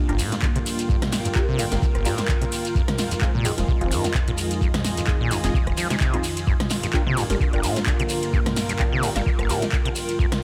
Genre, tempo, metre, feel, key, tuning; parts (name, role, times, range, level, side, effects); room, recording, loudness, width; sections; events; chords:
acid house; 129 BPM; 4/4; swing 55% on 16ths; G phrygian; A4 = 440 Hz
lush unison pad; sustained chords; 0.0-10.4 s; F2 to F4; -33 LUFS; equal; chorus, phaser, sidechain pumping
filtered dub chord stab; stabs; 0.0-9.6 s; C4 to Bb4; -34 LUFS; equal; phaser, ensemble chorus, digital delay
granular cloud pad; texture; 0.0-10.4 s; F4 to Ab5; -33 LUFS; equal; built-in reverb, sidechain pumping
acid bass, saw; riff; 0.1-10.3 s; F1 to F3; -29 LUFS; equal; overdrive, cassette tape, digital delay
electro analog drum machine; drums; 0.1-10.4 s; handclaps, hi-hat, ride cymbal, rim click, snare drum, toms; -30 LUFS; equal; overdrive
shekere; percussion; 0.2-10.3 s; -36 LUFS; equal
electronic kick drum; drums; 0.4-10.3 s; -25 LUFS; equal; overdrive
light reverb, digital ambience; -23 LUFS; mono
0.0-10.4 A section
0.0 Gm7; 2.8 Fm7; 6.5 Gm7